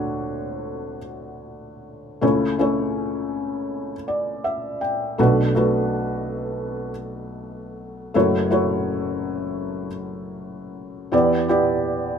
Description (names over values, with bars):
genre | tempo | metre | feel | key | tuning
folk | 81 BPM | 4/4 | straight | B minor | A4 = 444 Hz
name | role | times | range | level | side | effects
felt-muted upright piano | solo | 0.0-12.2 s | F#1 to G5 | -21 LUFS | equal | none
room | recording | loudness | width
light reverb | minimal, uncompressed stereo recording | -20 LUFS | side -7 dB against mid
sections
0.0-11.1 A section; 11.1-12.2 B section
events
none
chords
0.0 Dmaj7; 2.2 A/C#; 5.2 Bm7; 8.1 F#m7; 11.1 Em7